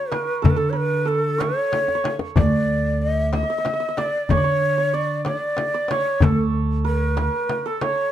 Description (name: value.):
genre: Persian modal ensemble.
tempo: 62 BPM (dotted quarters).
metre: 6/8.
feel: straight.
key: D dastgah chahargah.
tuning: A4 = 441 Hz.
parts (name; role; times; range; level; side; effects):
breathy ney; melody; 0.0-8.1 s; A4 to Eb5+46c; -23 LUFS; equal; none.
santur; second line; 0.0-8.1 s; F#4 to Eb5+45c; -28 LUFS; right 7 dB; none.
frame drum; percussion; 0.1-8.0 s; none; -25 LUFS; left 4 dB; none.
tombak; percussion; 0.1-8.0 s; none; -23 LUFS; left 3 dB; none.
upright bass; bass; 0.4-7.3 s; D2 to D3; -22 LUFS; right 2 dB; none.
room: light reverb.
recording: dark, warm production.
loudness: -19 LUFS.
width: side -11 dB against mid.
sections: 0.0-8.1 A section.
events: drum fill 1.7-2.4.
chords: none.